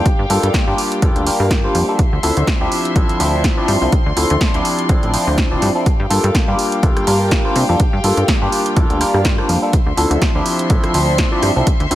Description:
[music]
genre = filtered disco house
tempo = 124 BPM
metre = 4/4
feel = swing 56% on 16ths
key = G dorian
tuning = A4 = 440 Hz
[part]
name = overdriven tine electric piano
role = accompaniment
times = 0.0-11.9 s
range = F3 to D5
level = -18 LUFS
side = equal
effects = phaser, vintage 12-bit sampler grit, sidechain pumping, low-pass filter
[part]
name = warm studio string section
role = sustained chords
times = 0.0-11.9 s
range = F3 to C6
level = -23 LUFS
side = left 1 dB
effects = vintage 12-bit sampler grit, sidechain pumping, low-pass filter
[part]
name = plucky analog bass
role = bass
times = 0.1-11.9 s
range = D1 to C3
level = -19 LUFS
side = equal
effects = sidechain pumping, low-pass filter
[part]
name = electronic kick drum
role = drums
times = 0.1-11.8 s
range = none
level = -16 LUFS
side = equal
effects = none
[part]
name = punchy analog drum machine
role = drums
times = 0.1-11.9 s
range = hi-hat, rim click, snare drum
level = -22 LUFS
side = right 1 dB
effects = sidechain pumping on hats, sidechain pumping on cymbals
[sound]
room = light reverb, digital ambience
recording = none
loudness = -13 LUFS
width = side -14 dB against mid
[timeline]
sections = 0.0-11.9 A section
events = none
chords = 0.0 Gm7; 2.0 Dm9; 5.9 Gm7; 9.7 Dm9

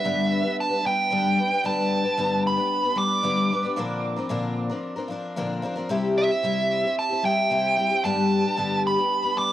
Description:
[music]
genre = rock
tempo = 113 BPM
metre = 4/4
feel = straight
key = G major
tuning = A4 = 441 Hz
[part]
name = dark smooth lead guitar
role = melody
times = 0.0-9.5 s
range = E5 to D6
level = -24 LUFS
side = right 3 dB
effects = overdrive, analog delay
[part]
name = picked twelve-string acoustic guitar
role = accompaniment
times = 0.0-9.5 s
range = G2 to B4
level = -24 LUFS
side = left 3 dB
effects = none
[sound]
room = light reverb, studio reverb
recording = home recording on cassette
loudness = -21 LUFS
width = side -12 dB against mid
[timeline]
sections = 0.0-9.5 A section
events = lead electric guitar solo 0.0-9.5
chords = 0.0 G; 3.8 Bbadd9; 5.9 C; 8.0 G

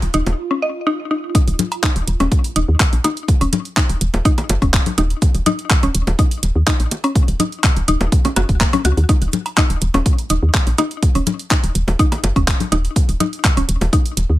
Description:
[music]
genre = minimal techno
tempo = 124 BPM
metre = 4/4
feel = straight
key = Eb minor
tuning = A4 = 437 Hz
[part]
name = woody FM bass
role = bass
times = 0.0-14.4 s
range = Eb1 to Eb2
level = -18 LUFS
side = equal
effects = sidechain pumping
[part]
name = house drum kit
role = drums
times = 0.0-14.3 s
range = handclaps, hi-hat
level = -21 LUFS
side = right 1 dB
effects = none
[part]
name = mallet-like synth pluck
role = riff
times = 0.1-14.0 s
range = Bb3 to Eb5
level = -21 LUFS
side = left 1 dB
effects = chorus, sidechain pumping, ping-pong delay
[part]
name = bongos, congas and cowbell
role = percussion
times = 0.3-13.9 s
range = none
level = -22 LUFS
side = left 3 dB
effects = dub echo
[part]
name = electronic kick drum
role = drums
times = 1.3-14.0 s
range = none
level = -15 LUFS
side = equal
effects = none
[sound]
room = little or no reverb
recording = none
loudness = -14 LUFS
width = side -16 dB against mid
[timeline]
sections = 0.0-1.3 A section; 1.3-14.4 B section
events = break 0.4-1.3; drop 1.3-14.4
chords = 0.0 Eb5

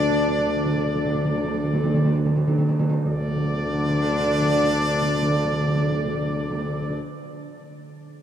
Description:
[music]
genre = classical, ceremonial fanfare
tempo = 44 BPM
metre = 4/4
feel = straight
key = unclear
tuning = A4 = 440 Hz
[part]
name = bright trumpet section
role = melody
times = 0.0-7.0 s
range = D5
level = -28 LUFS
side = left 1 dB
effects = none
[part]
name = mellow French horn section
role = sustained chords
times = 0.0-7.0 s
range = D4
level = -30 LUFS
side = left 1 dB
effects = none
[part]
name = warm trombone section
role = sustained chords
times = 0.0-7.0 s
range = D3 to D4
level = -31 LUFS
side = left 2 dB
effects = none
[part]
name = mellow tuba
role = bass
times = 0.0-7.0 s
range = D2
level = -27 LUFS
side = equal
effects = none
[part]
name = timpani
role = percussion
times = 0.0-7.0 s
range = D3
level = -24 LUFS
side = right 1 dB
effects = none
[sound]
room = wet cathedral reverb, RT60 5.6 s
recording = in a vast, echoing space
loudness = -20 LUFS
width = side -9 dB against mid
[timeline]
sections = 0.0-3.1 A section; 3.1-8.2 B section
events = timpani fill 0.0-3.1; slowing down 0.0-3.1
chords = none

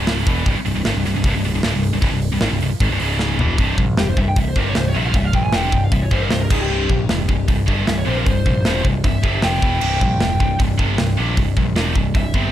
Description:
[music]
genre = heavy metal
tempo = 154 BPM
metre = 4/4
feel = straight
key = C phrygian dominant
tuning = A4 = 440 Hz
[part]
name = scooped high-gain guitar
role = riff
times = 0.0-12.5 s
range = C2 to F3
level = -20 LUFS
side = equal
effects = distortion
[part]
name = growling picked electric bass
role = bass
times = 0.0-12.5 s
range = C1 to Bb1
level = -21 LUFS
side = equal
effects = overdrive
[part]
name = tight metal drum kit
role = drums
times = 0.1-12.4 s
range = crash cymbal, hi-hat, kick drum, snare drum, toms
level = -20 LUFS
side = equal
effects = none
[part]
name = high-gain lead guitar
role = melody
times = 4.0-12.5 s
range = G4 to Ab5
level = -25 LUFS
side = left 1 dB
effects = distortion, digital delay
[sound]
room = little or no reverb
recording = dark, warm production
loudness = -16 LUFS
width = side -12 dB against mid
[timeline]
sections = 0.0-3.6 A section; 3.6-12.5 B section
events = drum fill 3.2-3.6; lead electric guitar solo 3.6-12.5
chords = 0.3 C; 3.0 Db5; 3.4 E5; 3.6 C5; 6.5 Db5; 6.7 C; 9.4 F5; 9.6 E5; 9.8 C5

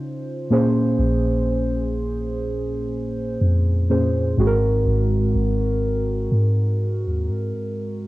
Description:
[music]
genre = contemporary R&B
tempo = 62 BPM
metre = 4/4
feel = swing 54% on 16ths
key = unclear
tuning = A4 = 439 Hz
[part]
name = muted felt-like synth keys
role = accompaniment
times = 0.0-8.1 s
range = Ab2 to C5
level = -21 LUFS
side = equal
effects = chorus, cassette tape
[part]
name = soft 808-style bass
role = bass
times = 0.0-7.5 s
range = Ab1 to Db3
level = -23 LUFS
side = equal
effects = none
[sound]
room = light reverb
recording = home recording on cassette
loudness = -19 LUFS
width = side -18 dB against mid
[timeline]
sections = 0.0-8.1 A section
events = none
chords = 0.0 Dbmaj7; 0.5 Bbm9; 4.4 Ab7

